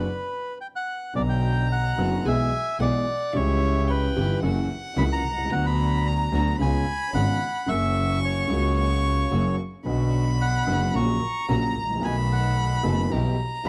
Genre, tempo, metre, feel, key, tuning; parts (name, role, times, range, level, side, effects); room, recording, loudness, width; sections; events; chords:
tango; 110 BPM; 4/4; rubato; B harmonic minor; A4 = 440 Hz
bandoneon; melody; 0.0-13.7 s; B4 to C#6; -31 LUFS; equal
warm violin; second line; 0.0-13.7 s; E5 to C#6; -35 LUFS; equal
warm upright piano; accompaniment; 0.0-13.7 s; F#1 to G#4; -30 LUFS; equal
warm studio string section; stabs; 1.2-13.7 s; F#3 to A4; -38 LUFS; equal
clear double bass; bass; 1.2-13.7 s; F#1 to D2; -27 LUFS; equal
small room ambience; dry, close 1970s-style studio recording; -24 LUFS; mono
0.0-1.2 A section; 1.2-13.7 B section
stop 0.1-1.2
0.0 B5; 1.2 Bm; 2.3 E/B; 3.3 C#dim; 4.4 F#7; 5.5 Bm/D; 6.6 C#7; 7.7 F#; 9.9 Bm; 11.0 F#/A#; 12.0 B7; 13.1 Em/B